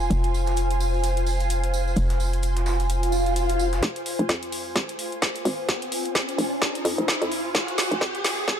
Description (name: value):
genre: bass house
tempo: 129 BPM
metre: 4/4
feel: swing 58% on 16ths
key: F minor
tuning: A4 = 438 Hz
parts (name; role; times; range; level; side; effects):
- hollow knocking FM bass; bass; 0.0-8.6 s; F1 to F2; -24 LUFS; equal; tube saturation, sidechain pumping, high-pass filter
- tambourine; percussion; 0.0-3.8 s; none; -38 LUFS; right 5 dB; none
- ethereal airy pad; texture; 0.0-8.6 s; F4 to Ab5; -29 LUFS; equal; ensemble chorus, built-in reverb, phaser, sidechain pumping
- breakbeat sampler-style drum kit; drums; 0.1-3.8 s; hi-hat, snare drum, tambourine; -41 LUFS; equal; overdrive, high-pass filter on perc, low-pass filter on perc, high-pass filter on snare, low-pass filter on snare, high-pass filter on hats, low-pass filter on hats, high-pass filter on room, low-pass filter on room
- garage drum kit; drums; 0.1-8.6 s; hi-hat, snare drum; -27 LUFS; equal; high-pass filter on hats, high-pass filter on snare
- swell and riser; sound effects; 3.0-8.6 s; none; -29 LUFS; equal; none
- electronic kick drum; drums; 3.8-8.6 s; none; -28 LUFS; equal; high-pass filter on kick
room: light reverb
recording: dark, warm production, high-pass filter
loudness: -22 LUFS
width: side -9 dB against mid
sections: 0.0-3.8 A section; 3.8-8.6 B section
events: swell 3.0-3.8; build-up 3.8-8.6; drum fill 3.8-8.6; riser 3.8-8.6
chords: 0.0 Fm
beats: | 0.11 0.57 1.04 1.50 | 1.97 2.43 2.90 3.36 | 3.83 4.29 4.76 5.22 | 5.69 6.15 6.62 7.08 | 7.55 8.01 8.48